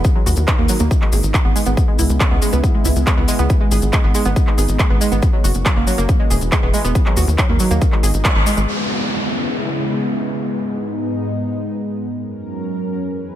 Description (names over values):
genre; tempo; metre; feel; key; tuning
uplifting trance; 139 BPM; 4/4; straight; G# minor; A4 = 440 Hz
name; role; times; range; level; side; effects
lush unison pad; sustained chords; 0.0-13.4 s; E2 to B4; -23 LUFS; equal; chorus, sidechain pumping
wide unison pluck; arpeggios; 0.0-8.6 s; F#3 to G#4; -22 LUFS; right 3 dB; sidechain pumping, ping-pong delay
tight sequencer bass; bass; 0.0-8.7 s; E1 to D#2; -18 LUFS; equal; sidechain pumping
big-room dance drum kit; drums; 0.0-8.7 s; handclaps, hi-hat; -24 LUFS; equal; overdrive, studio ambience
electronic kick drum; drums; 0.0-8.3 s; none; -16 LUFS; equal; overdrive, studio ambience
cabasa; percussion; 0.0-8.7 s; none; -28 LUFS; left 6 dB; none
downlifter; sound effects; 8.7-12.1 s; none; -25 LUFS; equal; none
room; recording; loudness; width
digital ambience; none; -15 LUFS; side -12 dB against mid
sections
0.0-8.7 A section; 8.7-13.4 B section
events
band accent 8.2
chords
0.0 D#m; 0.9 G#m; 1.8 C#m7; 3.5 G#m; 5.2 F#; 6.1 E; 7.0 D#m; 7.8 G#m; 8.7 C#m7; 10.4 G#m; 12.1 F#